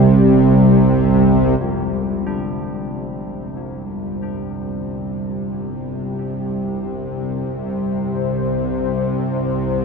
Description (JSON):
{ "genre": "dark ambient drone", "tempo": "free time", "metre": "none", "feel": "none", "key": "unclear", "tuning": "A4 = 440 Hz", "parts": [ { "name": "deep dark ambient pad", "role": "sustained chords", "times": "0.0-9.8 s", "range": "G3 to D5", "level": "-19 LUFS", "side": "equal", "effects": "chorus, built-in reverb" }, { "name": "carillon bells", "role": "arpeggios", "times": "0.0-9.8 s", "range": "G2 to D4", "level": "-32 LUFS", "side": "left 2 dB", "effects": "ping-pong delay" }, { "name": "bowed-like drone", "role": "drone", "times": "0.0-9.8 s", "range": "C2 to C3", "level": "-20 LUFS", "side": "right 2 dB", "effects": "built-in reverb" }, { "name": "bronze singing bowl", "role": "texture", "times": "0.0-1.6 s", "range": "B3 to B5", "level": "-40 LUFS", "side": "right 2 dB", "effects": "none" } ], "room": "wet cathedral reverb, RT60 5.8 s", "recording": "none", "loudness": "-16 LUFS", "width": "side -5 dB against mid", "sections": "0.0-1.6 A section; 1.6-9.8 B section", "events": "fade-in on synth drone 1.6-9.8; fade-in on ambient pad 1.6-9.8; fade-in on church bells 1.6-9.8", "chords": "0.0 C5" }